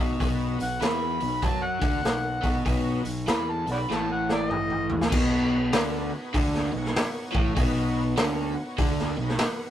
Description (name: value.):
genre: blues rock power trio and southern rock.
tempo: 98 BPM.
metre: 4/4.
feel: swing 63% on 8ths.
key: B mixolydian.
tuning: A4 = 440 Hz.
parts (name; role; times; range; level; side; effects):
bright tonewheel organ; sustained chords; 0.0-9.7 s; B3 to F#5; -38 LUFS; equal; slow rotary speaker, overdrive, chorus vibrato.
overdriven electric guitar; riff; 0.0-9.4 s; A2 to F#3; -28 LUFS; equal; none.
fuzz fingered electric bass; bass; 0.0-9.4 s; A1 to F#2; -31 LUFS; equal; overdrive.
raw garage drum kit; drums; 0.2-9.6 s; crash cymbal, hi-hat, kick drum, snare drum, toms; -27 LUFS; equal; none.
overdriven harmonica; melody; 0.6-4.9 s; D5 to B5; -29 LUFS; left 1 dB; none.
room: moderate booth ambience, RT60 0.2 s.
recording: rough rehearsal-room recording.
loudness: -23 LUFS.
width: side -11 dB against mid.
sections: 0.0-5.1 A section; 5.1-9.7 B section.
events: drum fill 3.9-5.1; tonewheel organ fill 8.8-9.7.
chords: 0.0 B.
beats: | 0.21 0.82 1.44 2.05 | 2.67 3.28 3.90 4.51 | 5.12 5.73 6.35 6.96 | 7.57 8.18 8.79 9.40.